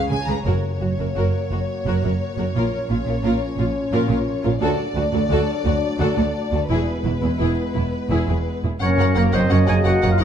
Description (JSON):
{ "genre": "cinematic, heroic adventure film score", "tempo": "115 BPM (dotted quarters)", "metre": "12/8", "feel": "straight", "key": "unclear", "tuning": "A4 = 440 Hz", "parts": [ { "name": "warm symphonic violin section", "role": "melody", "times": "0.0-10.2 s", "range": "B4 to A#5", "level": "-28 LUFS", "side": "left 4 dB", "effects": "none" }, { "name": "rich symphonic viola section", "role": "accompaniment", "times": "0.1-10.2 s", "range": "E4 to B4", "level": "-29 LUFS", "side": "right 1 dB", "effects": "none" }, { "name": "rich symphonic double bass section", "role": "bass", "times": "0.1-10.2 s", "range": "E1 to D2", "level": "-23 LUFS", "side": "right 3 dB", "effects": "none" }, { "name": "warm studio cello section", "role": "bass", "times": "0.1-10.2 s", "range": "D2 to C#3", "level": "-24 LUFS", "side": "right 2 dB", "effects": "none" }, { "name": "mellow French horn section", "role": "sustained chords", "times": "0.4-10.2 s", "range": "F3 to Ab4", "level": "-27 LUFS", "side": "left 4 dB", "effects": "none" }, { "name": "warm symphonic violin section", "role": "second line", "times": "0.5-10.2 s", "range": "E4 to Db5", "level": "-30 LUFS", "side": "left 2 dB", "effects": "none" }, { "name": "timpani", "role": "percussion", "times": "0.5-0.9 s", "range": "Gb2", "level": "-28 LUFS", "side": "left 1 dB", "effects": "none" }, { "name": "clear oboe", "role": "second line", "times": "8.8-10.2 s", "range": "Bb4 to Ab5", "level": "-26 LUFS", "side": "equal", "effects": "none" }, { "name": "mellow large flute ensemble", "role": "second line", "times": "8.8-10.2 s", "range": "Bb4 to Ab5", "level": "-28 LUFS", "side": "equal", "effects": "none" }, { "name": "warm clarinet", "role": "second line", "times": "8.8-10.2 s", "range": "Bb4 to Eb5", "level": "-27 LUFS", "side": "left 1 dB", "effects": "none" }, { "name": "dark trombone section", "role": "sustained chords", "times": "8.8-10.2 s", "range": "Gb3 to Bb3", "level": "-26 LUFS", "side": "right 3 dB", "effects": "none" } ], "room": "wet recital hall reverb, RT60 1.8 s", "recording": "nothing above 10.8 kHz", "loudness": "-18 LUFS", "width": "side -8 dB against mid", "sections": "0.5-8.8 A section; 8.8-10.2 B section", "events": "none", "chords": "0.5 Gb; 2.5 Bbm; 4.6 D; 6.7 E; 8.8 Gb" }